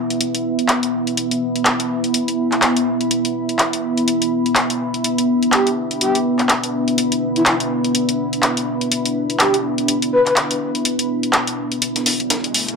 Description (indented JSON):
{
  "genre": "bass house",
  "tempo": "124 BPM",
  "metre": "4/4",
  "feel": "swing 58% on 16ths",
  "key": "unclear",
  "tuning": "A4 = 440 Hz",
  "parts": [
    { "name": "deep dark ambient pad", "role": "sustained chords", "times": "0.0-12.8 s", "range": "B3 to E5", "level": "-22 LUFS", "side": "left 2 dB", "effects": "chorus, built-in reverb" },
    { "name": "deep dark ambient pad", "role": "texture", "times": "0.0-12.8 s", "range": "B3 to B5", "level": "-22 LUFS", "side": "right 2 dB", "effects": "chorus, built-in reverb" },
    { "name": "house drum kit", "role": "drums", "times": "0.1-12.8 s", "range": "handclaps, hi-hat", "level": "-19 LUFS", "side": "left 1 dB", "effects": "none" },
    { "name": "breathy flute-like synth lead", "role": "melody", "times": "5.5-10.3 s", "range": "E4 to B4", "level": "-19 LUFS", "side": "left 1 dB", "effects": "lush chorus, ping-pong delay" },
    { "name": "breakbeat sampler-style drum kit", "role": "drums", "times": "11.8-12.7 s", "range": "hi-hat, snare drum", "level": "-27 LUFS", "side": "right 2 dB", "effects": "high-pass filter on snare, high-pass filter on hats" },
    { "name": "riser", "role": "sound effects", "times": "12.1-12.8 s", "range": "none", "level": "-34 LUFS", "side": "left 2 dB", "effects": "none" }
  ],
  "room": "moderate plate reverb, RT60 1.2 s",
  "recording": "none",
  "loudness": "-16 LUFS",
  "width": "side -4 dB against mid",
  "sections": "0.0-11.8 A section",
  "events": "riser 12.1-12.8",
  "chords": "0.0 E5"
}